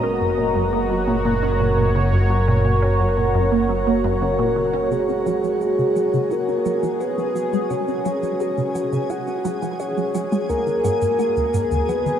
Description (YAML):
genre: ambient, sequencer-driven space music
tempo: 86 BPM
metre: 4/4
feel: straight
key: unclear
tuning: A4 = 440 Hz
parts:
  - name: soft octave-layered synth lead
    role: melody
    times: 0.0-12.2 s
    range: G#4 to F#5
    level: -23 LUFS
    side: equal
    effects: chorus, shimmer reverb, tape echo
  - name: sweeping resonant pad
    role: sustained chords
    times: 0.0-12.2 s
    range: F#4 to A#5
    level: -24 LUFS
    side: equal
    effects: chorus, shimmer reverb
  - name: resonant blip pluck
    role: riff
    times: 0.0-12.2 s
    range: D#2 to G#4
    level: -24 LUFS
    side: right 1 dB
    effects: phaser, wide subtle chorus, tape echo
  - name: analog drone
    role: bass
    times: 0.3-4.9 s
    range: F#1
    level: -22 LUFS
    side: equal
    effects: chorus
  - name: shaker and woodblock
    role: percussion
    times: 4.9-12.2 s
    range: none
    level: -43 LUFS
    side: right 6 dB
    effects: tape echo
  - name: twinkling granular texture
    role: texture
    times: 6.1-12.2 s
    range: G#4 to G#5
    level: -41 LUFS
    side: equal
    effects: built-in reverb, ensemble chorus, shimmer reverb
room: wet huge ambient reverb, RT60 8.0 s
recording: dreamy mix soaked in reverb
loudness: -18 LUFS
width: side -9 dB against mid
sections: 0.0-4.9 A section; 4.9-12.2 B section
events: fade-in on synth texture 4.9-12.2; fade-in on drum 4.9-12.2; filter sweep on synth arpeggio sound 4.9-12.2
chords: 0.0 F#; 4.9 C#sus4; 10.5 D#sus4